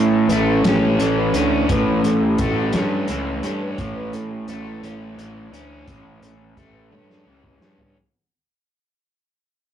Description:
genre	psychedelic rock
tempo	57 BPM (dotted quarters)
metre	6/8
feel	straight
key	A mixolydian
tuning	A4 = 440 Hz
part	mellow tonewheel organ	sustained chords	0.0-7.6 s	E3 to C#5	-22 LUFS	right 1 dB	slow rotary speaker
part	biting overdriven guitar	riff	0.0-8.0 s	A2 to C#4	-23 LUFS	equal	none
part	fuzz picked electric bass	bass	0.0-7.9 s	A1 to A2	-24 LUFS	equal	overdrive
part	cloth-damped thuddy drum kit	drums	0.3-7.9 s	hi-hat, kick drum, snare drum, toms	-25 LUFS	equal	none
room	wet small room reverb, RT60 0.6 s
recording	rough rehearsal-room recording, warm saturation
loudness	-17 LUFS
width	side -10 dB against mid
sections	0.0-8.0 A section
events	fade-out 0.0-8.0; tonewheel organ solo 0.0-8.0; drum fill 6.9-8.0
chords	0.0 A

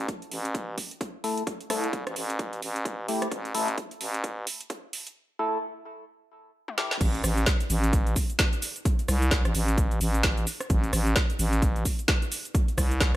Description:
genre	bass house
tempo	130 BPM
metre	4/4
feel	swing 59% on 16ths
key	A minor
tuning	A4 = 439 Hz
part	growling FM bass	bass	0.0-13.1 s	A1 to C2	-26 LUFS	equal	overdrive, sidechain pumping, high-pass filter
part	electronic kick drum	drums	0.1-13.1 s	none	-26 LUFS	equal	overdrive, high-pass filter on kick, studio ambience, high-pass filter on room
part	garage drum kit	drums	0.1-13.1 s	cabasa, crash cymbal, hi-hat, rim click, snare drum, toms	-29 LUFS	right 1 dB	overdrive, studio ambience
part	percussive organ stab	stabs	1.2-7.0 s	A3 to A4	-31 LUFS	left 2 dB	chorus, sidechain pumping, digital delay
room	little or no reverb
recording	high-pass filter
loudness	-24 LUFS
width	side -15 dB against mid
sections	0.0-7.0 A section; 7.0-13.2 B section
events	build-up 0.0-7.0; filter sweep on synth stab 0.0-7.0; drum fill 3.3-5.2, 6.7-7.0; drop 7.0-13.2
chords	0.0 A5

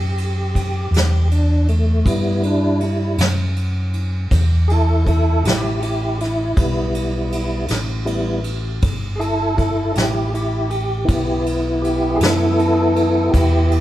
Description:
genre	slow blues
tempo	53 BPM (dotted quarters)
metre	12/8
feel	straight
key	E minor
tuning	A4 = 440 Hz
part	tonewheel organ	sustained chords	0.0-13.8 s	E3 to A4	-20 LUFS	equal	slow rotary speaker, chorus vibrato
part	fingered electric bass	bass	0.0-13.8 s	G1 to G2	-19 LUFS	equal	none
part	vintage brush drum kit	drums	0.2-13.8 s	kick drum, ride cymbal, snare drum	-23 LUFS	equal	none
room	moderate stone room reverb, RT60 1.4 s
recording	band playing live in one room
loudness	-16 LUFS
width	side -14 dB against mid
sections	0.0-13.8 A section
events	tonewheel organ solo 0.0-13.8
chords	0.0 Em

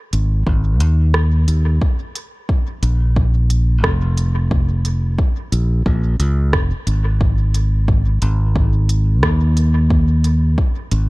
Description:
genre	ambient dub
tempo	89 BPM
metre	4/4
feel	swing 59% on 16ths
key	Bb minor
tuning	A4 = 440 Hz
part	modern bright fingered electric bass	bass	0.1-11.1 s	F1 to Eb2	-14 LUFS	equal	none
part	organic electronic drum kit	drums	0.1-11.1 s	hi-hat, rim click	-25 LUFS	right 1 dB	studio reverb, dub echo
part	electronic kick drum	drums	0.5-10.7 s	none	-18 LUFS	equal	overdrive, studio reverb
room	little or no reverb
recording	none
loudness	-14 LUFS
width	side -23 dB against mid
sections	0.0-1.8 A section; 1.8-11.1 B section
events	none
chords	none

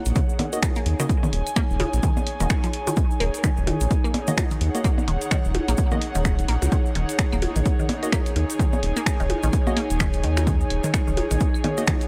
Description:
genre	minimal techno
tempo	128 BPM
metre	4/4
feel	swing 58% on 16ths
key	Eb minor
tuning	A4 = 440 Hz
part	airy breathy pad	texture	0.0-12.1 s	Eb4 to Ab5	-31 LUFS	equal	chorus, sidechain pumping
part	round analog bass	bass	0.1-11.4 s	Eb1 to Eb2	-26 LUFS	equal	sidechain pumping
part	punchy analog drum machine	drums	0.1-12.1 s	finger snaps, hi-hat	-32 LUFS	equal	none
part	cabasa	percussion	0.1-12.1 s	none	-39 LUFS	equal	none
part	resonant blip pluck	riff	0.2-11.9 s	Db3 to Bb3	-32 LUFS	equal	phaser, cassette tape, sidechain pumping, analog delay
part	electronic kick drum	drums	0.2-12.0 s	none	-25 LUFS	equal	none
part	percussion blips and claves	percussion	0.4-12.0 s	none	-33 LUFS	equal	analog delay
part	wavetable chord stab	stabs	0.5-11.8 s	Bb3 to Eb5	-33 LUFS	equal	analog delay
room	little or no reverb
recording	dry, gritty hardware recording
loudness	-23 LUFS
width	mono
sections	0.0-12.1 A section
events	none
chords	0.0 Ebm

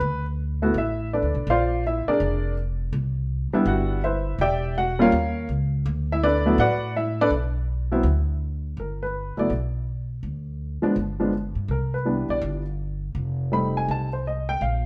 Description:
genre	jazz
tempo	164 BPM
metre	4/4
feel	swing 65% on 8ths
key	G major from 8.8 s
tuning	A4 = 440 Hz
part	warm baby grand piano	melody	0.0-14.8 s	E3 to B5	-25 LUFS	equal	none
part	upright bass	bass	0.0-14.9 s	E1 to A2	-28 LUFS	equal	none
room	moderate stone room reverb, RT60 1.1 s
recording	band playing live in one room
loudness	-25 LUFS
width	mono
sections	0.0-8.8 A section; 8.8-14.9 B section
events	none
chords	0.0 D5; 1.5 A#9; 2.9 Cmaj7; 4.4 Em7; 5.1 D#sus2; 5.9 D6; 7.3 B5; 8.0 N.C.; 8.8 G; 10.2 N.C.; 11.7 Cmaj7; 13.2 F7

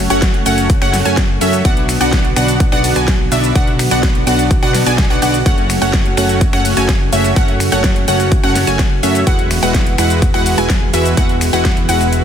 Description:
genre	EDM, festival progressive house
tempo	126 BPM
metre	4/4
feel	straight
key	F# minor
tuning	A4 = 443 Hz
part	lush unison pad	sustained chords	0.0-12.2 s	C#3 to F#4	-22 LUFS	equal	chorus, sidechain pumping
part	wide unison pluck	arpeggios	0.0-12.2 s	E5 to G#5	-20 LUFS	equal	sidechain pumping, ping-pong delay
part	supersaw stab	riff	0.0-12.2 s	G#3 to G#5	-17 LUFS	equal	sidechain pumping, ping-pong delay
part	fat analog bass	bass	0.0-12.2 s	E1 to F#2	-19 LUFS	equal	sidechain pumping
part	big-room dance drum kit	drums	0.1-12.2 s	finger snaps, hi-hat, ride cymbal, shaker, snare drum	-21 LUFS	equal	overdrive
part	electronic kick drum	drums	0.2-11.7 s	none	-14 LUFS	equal	overdrive
room	little or no reverb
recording	dense, heavily limited modern master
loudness	-11 LUFS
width	side -8 dB against mid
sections	0.0-12.2 A section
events	none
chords	0.0 F#m; 1.6 Bm; 5.5 F#m; 9.3 Eadd9

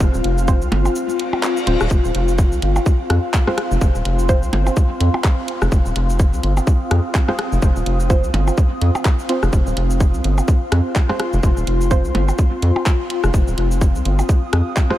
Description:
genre	minimal techno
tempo	126 BPM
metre	4/4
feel	swing 57% on 16ths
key	unclear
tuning	A4 = 440 Hz
part	rubbery square bass	bass	0.0-14.6 s	Eb1 to F2	-18 LUFS	equal	sidechain pumping
part	electronic kick drum	drums	0.0-14.9 s	none	-15 LUFS	equal	overdrive
part	garage drum kit	drums	0.0-14.9 s	cabasa, handclaps, hi-hat	-29 LUFS	equal	overdrive
part	warbly tape-like pad	texture	0.0-15.0 s	C4 to F6	-24 LUFS	left 2 dB	chorus, built-in reverb, phaser, sidechain pumping
part	filtered dub chord stab	stabs	0.5-4.4, 7.3-12.0, 14.9-15.0 s	C4 to C5	-28 LUFS	right 2 dB	chorus, diffuse ambient delay
part	electronic percussion blips and rim click	percussion	0.7-15.0 s	none	-27 LUFS	equal	diffuse ambient delay
part	reverse cymbal	sound effects	1.1-1.9 s	none	-35 LUFS	left 4 dB	none
room	light reverb, digital ambience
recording	faint mains hum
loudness	-15 LUFS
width	side -14 dB against mid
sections	0.0-15.0 A section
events	kick drops out 1.0-1.9; reverse cymbal 1.1-1.9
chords	0.0 F5

